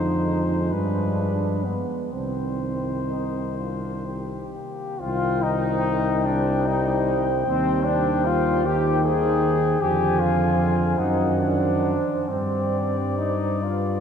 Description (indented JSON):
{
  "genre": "classical, hymn-like piece for brass band",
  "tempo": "40-52 BPM (dotted quarters)",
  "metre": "6/8",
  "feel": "rubato",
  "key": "C minor",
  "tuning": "A4 = 440 Hz",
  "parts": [
    { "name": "mellow cornet", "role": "melody", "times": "0.0-14.0 s", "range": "B4 to Ab5", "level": "-30 LUFS", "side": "left 6 dB", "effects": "none" },
    { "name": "dark French horn section", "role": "second line", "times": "0.0-14.0 s", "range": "B3 to C5", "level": "-28 LUFS", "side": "right 5 dB", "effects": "none" },
    { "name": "bright trombone section", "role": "accompaniment", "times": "0.0-14.0 s", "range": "G3 to Ab4", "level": "-26 LUFS", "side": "left 3 dB", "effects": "none" },
    { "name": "warm euphonium", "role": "accompaniment", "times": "0.0-14.0 s", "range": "D3 to G3", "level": "-31 LUFS", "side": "right 3 dB", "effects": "none" },
    { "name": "mellow tuba", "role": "bass", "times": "0.0-14.0 s", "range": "C2 to G2", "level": "-25 LUFS", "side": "equal", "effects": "none" }
  ],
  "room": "wet cathedral reverb, RT60 5.2 s",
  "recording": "dark, warm production",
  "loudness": "-20 LUFS",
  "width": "side -7 dB against mid",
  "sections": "0.0-5.0 A section; 5.0-14.0 A section",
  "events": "none",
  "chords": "0.0 Dm7b5/F; 0.7 G7b9; 2.1 Cm; 7.5 Cm/Eb; 9.8 Dm7b5/F; 11.0 D7b9/F#; 12.3 Gsus4"
}